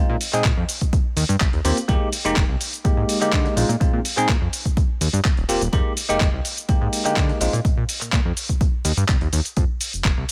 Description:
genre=filtered disco house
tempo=125 BPM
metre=4/4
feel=straight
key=F dorian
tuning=A4 = 440 Hz
part: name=barky tine electric piano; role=accompaniment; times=0.0-7.5 s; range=Ab3 to Ab4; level=-26 LUFS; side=equal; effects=phaser, sidechain pumping
part: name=fat analog bass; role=bass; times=0.0-10.2 s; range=Eb1 to D3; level=-26 LUFS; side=equal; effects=sidechain pumping
part: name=dusty soul sampler-style drum kit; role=drums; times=0.2-10.3 s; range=handclaps, hi-hat, shaker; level=-28 LUFS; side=equal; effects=sidechain pumping on hats, sidechain pumping on perc, sidechain pumping on cymbals
part: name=electronic kick drum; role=drums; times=0.4-10.1 s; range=none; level=-23 LUFS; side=equal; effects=none
room=digital ambience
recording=none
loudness=-21 LUFS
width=mono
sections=0.0-10.3 A section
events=none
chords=0.0 Bb7sus4; 0.7 Eb6; 1.9 Fm11; 3.6 Bb7sus4; 4.5 Eb; 5.7 Fm11; 7.4 Bb7sus4; 8.4 Eb6; 9.6 F5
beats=0.45 0.93 1.41 | 1.89 2.37 2.85 3.33 | 3.81 4.29 4.77 5.25 | 5.73 6.21 6.69 7.17 | 7.65 8.13 8.61 9.09 | 9.57 10.05

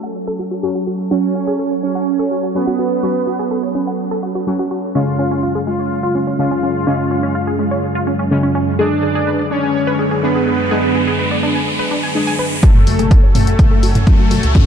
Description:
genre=melodic techno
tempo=125 BPM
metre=4/4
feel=straight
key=F# harmonic minor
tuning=A4 = 445 Hz
part: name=analog synth brass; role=melody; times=0.0-14.7 s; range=A3 to E#4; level=-21 LUFS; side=right 2 dB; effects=chorus, tape echo
part: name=soft supersaw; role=second line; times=0.0-14.7 s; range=A4 to E#5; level=-27 LUFS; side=right 2 dB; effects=sidechain pumping, dub echo
part: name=lush unison pad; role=sustained chords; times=0.0-14.7 s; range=F#2 to G#5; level=-22 LUFS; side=equal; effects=chorus, sidechain pumping
part: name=wide unison pluck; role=arpeggios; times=0.0-14.6 s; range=G#3 to G#5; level=-22 LUFS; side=right 1 dB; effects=sidechain pumping, dub echo
part: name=synth brass stab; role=stabs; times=0.0-14.7 s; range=C#3 to G#4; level=-22 LUFS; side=left 2 dB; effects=chorus, sidechain pumping, dub echo
part: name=riser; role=sound effects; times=9.4-14.7 s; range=none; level=-24 LUFS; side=equal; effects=none
part: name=electronic kick drum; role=drums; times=12.6-14.6 s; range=none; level=-11 LUFS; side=equal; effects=none
part: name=punchy analog drum machine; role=drums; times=12.6-14.6 s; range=hi-hat, toms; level=-18 LUFS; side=equal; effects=overdrive
part: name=fat analog bass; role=bass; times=12.9-14.7 s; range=F#1 to F#2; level=-19 LUFS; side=equal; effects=sidechain pumping
room=light reverb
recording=dark, warm production, low-pass filter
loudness=-14 LUFS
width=side -8 dB against mid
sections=0.0-12.6 A section; 12.6-14.7 B section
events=filter sweep on synth pluck 0.0-12.6; filter sweep on analog synth pad 0.0-12.6; filter sweep 0.0-12.6, 12.6-14.7; riser 9.4-12.6, 12.6-14.7; build-up 12.6-14.7; drum fill 12.6-14.7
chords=0.0 F#madd9; 5.0 C#/F#; 8.8 G#dim/F#; 12.6 F#madd9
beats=0.15 0.63 | 1.11 1.59 2.07 2.55 | 3.03 3.51 3.99 4.47 | 4.95 5.43 5.91 6.39 | 6.87 7.35 7.83 8.31 | 8.79 9.27 9.75 10.23 | 10.71 11.19 11.67 12.15 | 12.63 13.11 13.59 14.07 | 14.55

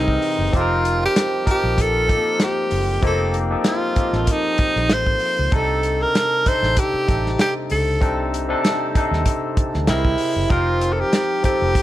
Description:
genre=lush 1970s-style soul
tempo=96 BPM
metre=4/4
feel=swing 54% on 16ths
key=C dorian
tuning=A4 = 440 Hz
part: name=breathy tenor saxophone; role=melody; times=0.0-11.8 s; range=D#4 to C5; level=-20 LUFS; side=equal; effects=none
part: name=barky tine electric piano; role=accompaniment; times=0.0-11.8 s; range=C3 to D#5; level=-23 LUFS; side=left 1 dB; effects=overdrive, lush chorus
part: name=vintage muted fingered electric bass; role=bass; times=0.0-11.7 s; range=F1 to Eb2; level=-23 LUFS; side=equal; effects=none
part: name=warm soul drum kit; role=drums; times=0.1-11.8 s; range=hi-hat, kick drum, snare drum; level=-21 LUFS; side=equal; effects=none
room=studio ambience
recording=none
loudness=-17 LUFS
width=side -14 dB against mid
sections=0.0-11.8 A section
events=none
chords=0.0 C7alt; 0.5 F7sus4; 5.5 Cm69; 9.9 C7alt; 10.5 F7sus4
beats=| 0.54 1.16 1.78 2.40 | 3.03 3.65 4.27 4.90 | 5.52 6.14 6.76 7.39 | 8.01 8.63 9.26 9.88 | 10.50 11.13 11.75

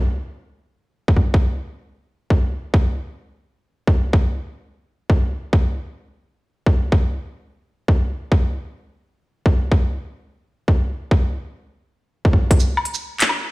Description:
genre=drum and bass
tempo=172 BPM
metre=4/4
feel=half-time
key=none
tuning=none
part: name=electronic kick drum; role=drums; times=1.1-12.6 s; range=none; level=-15 LUFS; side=equal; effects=none
part: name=drum and bass drum kit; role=drums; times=12.5-13.4 s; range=handclaps, hi-hat, shaker, woodblock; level=-19 LUFS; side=equal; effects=none
room=digital ambience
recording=played on a big sound system in a bare room, stone room reverb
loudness=-18 LUFS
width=side -22 dB against mid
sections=0.0-12.5 A section; 12.5-13.5 B section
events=drop 12.5-13.5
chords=none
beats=0.29 0.64 0.99 | 1.34 1.69 2.04 2.39 | 2.74 3.08 3.43 3.78 | 4.13 4.48 4.83 5.18 | 5.53 5.88 6.22 6.57 | 6.92 7.27 7.62 7.97 | 8.32 8.67 9.02 9.36 | 9.71 10.06 10.41 10.76 | 11.11 11.46 11.81 12.15 | 12.50 12.85 13.20

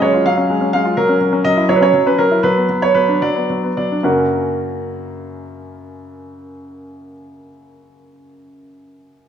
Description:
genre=classical-period piano sonatina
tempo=70-84 BPM (dotted quarters)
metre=6/8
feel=straight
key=F# major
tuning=A4 = 440 Hz
part: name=bright concert grand piano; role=solo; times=0.0-9.3 s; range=F#2 to F#5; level=-15 LUFS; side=equal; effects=none
room=wet recital hall reverb, RT60 1.6 s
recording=none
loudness=-13 LUFS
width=side -8 dB against mid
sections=0.0-4.0 A section; 4.0-7.3 B section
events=slowing down 0.2-4.0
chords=0.0 C#/F#; 1.0 F#7; 2.4 Bm/F#; 4.0 F#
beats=0.24 | 0.96 1.68 | 2.42 3.21 | 4.04 4.84 | 5.66 6.47

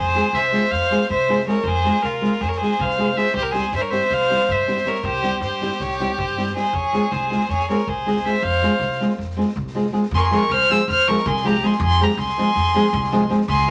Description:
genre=balkan folk, Balkan wedding band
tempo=319 BPM (eighths)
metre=9/8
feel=straight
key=F harmonic minor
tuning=A4 = 440 Hz
part: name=rich fiddle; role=melody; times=0.0-13.7 s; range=Bb4 to F6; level=-25 LUFS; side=equal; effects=none
part: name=clear violin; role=second line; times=0.0-13.7 s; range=F4 to C5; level=-25 LUFS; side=equal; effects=none
part: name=upright bass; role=bass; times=0.0-13.7 s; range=C2 to G2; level=-29 LUFS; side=equal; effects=none
part: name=nylon-string guitar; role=accompaniment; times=0.1-13.7 s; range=F3 to Ab4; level=-24 LUFS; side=equal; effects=none
part: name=street-band drum kit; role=percussion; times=0.2-13.6 s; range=kick drum, snare drum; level=-38 LUFS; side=equal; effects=none
room=wet studio reverb, RT60 0.6 s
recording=none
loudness=-20 LUFS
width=mono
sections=0.0-10.1 A section; 10.1-13.7 B section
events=none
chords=0.0 Fm; 3.3 C; 6.7 Fm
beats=0.14 0.33 0.52 0.71 0.90 1.08 1.27 1.46 | 1.65 1.84 2.02 2.21 2.40 2.59 2.78 2.96 3.15 | 3.34 3.53 3.72 3.91 4.09 4.28 4.47 4.66 4.85 | 5.04 5.22 5.41 5.60 5.79 5.98 6.17 6.35 6.54 | 6.73 6.92 7.11 7.29 7.48 7.67 7.86 8.05 8.24 | 8.43 8.61 8.80 8.99 9.18 9.36 9.55 9.74 9.93 | 10.12 10.30 10.49 10.68 10.86 11.05 11.24 11.43 11.61 | 11.80 11.99 12.17 12.36 12.55 12.73 12.92 13.11 13.29 | 13.48 13.67

